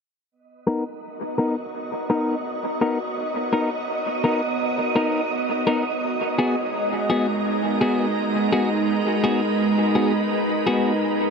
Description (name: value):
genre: ambient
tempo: 84 BPM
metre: 4/4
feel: swing 55% on 16ths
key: unclear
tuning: A4 = 440 Hz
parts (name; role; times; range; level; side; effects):
- soft additive organ-like pad; sustained chords; 0.3-11.3 s; G#3 to D#5; -24 LUFS; right 2 dB; ensemble chorus, built-in reverb, vintage 12-bit sampler grit
- wind-like tuned noise texture; texture; 1.2-11.3 s; D#5; -29 LUFS; right 3 dB; built-in reverb
- clean electric guitar; stabs; 0.7-10.9 s; B3 to A#4; -24 LUFS; left 2 dB; vibrato effect, low-pass filter, dub echo
room: moderate huge ambient reverb, RT60 7.5 s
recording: none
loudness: -20 LUFS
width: side -5 dB against mid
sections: 0.3-11.3 A section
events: fade-in on ambient pad 0.3-11.3; filter sweep on clean electric guitar 0.3-11.3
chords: 0.3 Bmaj7; 6.0 G#m7